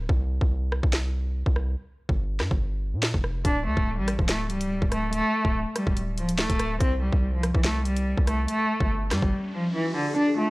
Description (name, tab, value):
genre	hip hop, drill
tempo	143 BPM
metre	4/4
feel	half-time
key	D minor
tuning	A4 = 437 Hz
part	hard-hitting 808-style bass	bass	0.0-9.3 s	C1 to Bb2	-27 LUFS	equal	none
part	drill drum kit	drums	0.1-9.3 s	hi-hat, kick drum, rim click, snare drum	-25 LUFS	equal	none
part	rich cello	melody	3.4-10.5 s	D3 to D4	-26 LUFS	equal	low-pass filter
part	riser	sound effects	9.3-10.2 s	none	-37 LUFS	equal	none
part	mellow tine electric piano	accompaniment	10.2-10.5 s	D4 to F4	-24 LUFS	equal	medium stereo tremolo, low-pass filter
room	little or no reverb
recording	dry, gritty hardware recording, cassette tape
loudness	-23 LUFS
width	side -22 dB against mid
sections	0.0-10.2 A section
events	break 0.0-3.4, 9.3-10.2; riser 9.3-10.2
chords	0.1 N.C.; 3.4 D5; 6.8 C5; 8.5 Fadd9/G (rootless)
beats	| 0.09 0.51 0.93 1.35 | 1.77 2.19 2.61 3.03 | 3.45 3.87 4.29 4.71 | 5.13 5.55 5.97 6.39 | 6.80 7.22 7.64 8.06 | 8.48 8.90 9.32 9.74 | 10.16